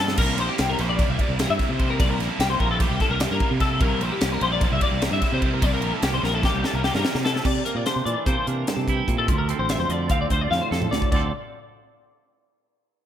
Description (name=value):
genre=math rock and midwest emo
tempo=296 BPM (eighths)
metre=9/8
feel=straight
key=unclear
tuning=A4 = 438 Hz
part: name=twelve-string electric guitar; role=arpeggios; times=0.0-11.3 s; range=F4 to F5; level=-26 LUFS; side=left 5 dB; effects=ensemble chorus
part: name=cranked stack guitar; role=riff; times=0.0-7.4 s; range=G2 to F4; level=-28 LUFS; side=right 3 dB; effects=overdrive, slapback echo
part: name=growling fingered electric bass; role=bass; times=0.0-11.3 s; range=A1 to C3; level=-26 LUFS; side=equal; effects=overdrive
part: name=crisp fusion drum kit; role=drums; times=0.1-11.2 s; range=crash cymbal, hi-hat, kick drum, ride cymbal, snare drum, toms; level=-24 LUFS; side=equal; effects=none
part: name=twangy electric guitar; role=accompaniment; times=7.5-11.3 s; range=D2 to A4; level=-28 LUFS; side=right 10 dB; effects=none
room=light reverb, small room ambience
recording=none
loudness=-20 LUFS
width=side -10 dB against mid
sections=0.0-7.5 A section; 7.5-11.1 B section; 11.1-12.9 C section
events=drum fill 0.0, 6.2-7.5, 10.5-11.1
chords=0.2 C9; 9.3 Dm9; 11.1 N.C.